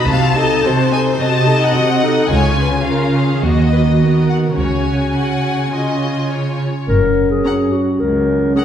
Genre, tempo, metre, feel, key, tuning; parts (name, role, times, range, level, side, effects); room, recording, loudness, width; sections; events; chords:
quick classical-period movement for symphony orchestra; 107 BPM; 4/4; straight; F# major; A4 = 441 Hz
rich chamber violin section; melody; 0.0-8.6 s; D#5 to A#5; -22 LUFS; left 4 dB
rich chamber violin section; second line; 0.0-8.6 s; F#4 to F#5; -22 LUFS; left 4 dB
rich studio viola section; accompaniment; 0.0-8.6 s; A#3 to A4; -20 LUFS; equal
clear chamber double bass section; bass; 0.1-7.3 s; F#1 to D#2; -20 LUFS; equal
warm symphonic cello section; bass; 0.1-8.5 s; C#2 to D#3; -17 LUFS; right 2 dB
warm clarinet; second line; 6.9-8.6 s; F#4 to A#4; -17 LUFS; left 4 dB
warm French horn section; sustained chords; 6.9-8.6 s; F#3 to C#4; -18 LUFS; right 1 dB
wet scoring stage reverb, RT60 1.8 s; heard from further back in the room; -13 LUFS; side -9 dB against mid
0.0-6.9 A section; 6.9-8.6 B section
0.1 Cdim7; 2.3 C#; 3.4 D#m; 4.6 C#sus4; 5.7 C#; 6.9 F#